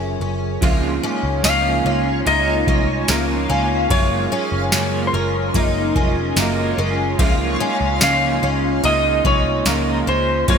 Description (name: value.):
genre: dream pop.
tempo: 73 BPM.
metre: 4/4.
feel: straight.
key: Db major.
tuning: A4 = 440 Hz.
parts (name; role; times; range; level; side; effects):
warbly tape-like pad; sustained chords; 0.0-10.6 s; Gb3 to Db5; -26 LUFS; right 2 dB; chorus, built-in reverb.
picked twelve-string acoustic guitar; arpeggios; 0.0-10.6 s; Bb3 to F4; -23 LUFS; left 4 dB; ensemble chorus, digital delay.
vintage muted picked electric bass; bass; 0.0-10.6 s; F1 to Db2; -23 LUFS; equal; none.
electric guitar at the edge of break-up; accompaniment; 0.6-10.6 s; Db3 to Ab4; -24 LUFS; right 5 dB; tremolo, analog chorus.
booming analog drum machine; drums; 0.6-10.6 s; kick drum, ride cymbal, snare drum, tambourine; -20 LUFS; equal; gated reverb.
clean lap steel guitar; melody; 1.4-10.6 s; Bb4 to F5; -21 LUFS; left 1 dB; wide subtle chorus, digital delay.
room: moderate lush hall reverb, RT60 3.0 s.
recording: bright 1980s-style digital production.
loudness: -16 LUFS.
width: side -6 dB against mid.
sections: 0.6-10.6 A section.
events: none.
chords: 0.0 Gbmaj9; 0.6 Db6; 3.9 Gbmaj9; 7.2 Db6.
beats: | 0.62 1.44 2.26 3.08 | 3.90 4.73 5.55 6.37 | 7.19 8.02 8.84 9.66 | 10.48.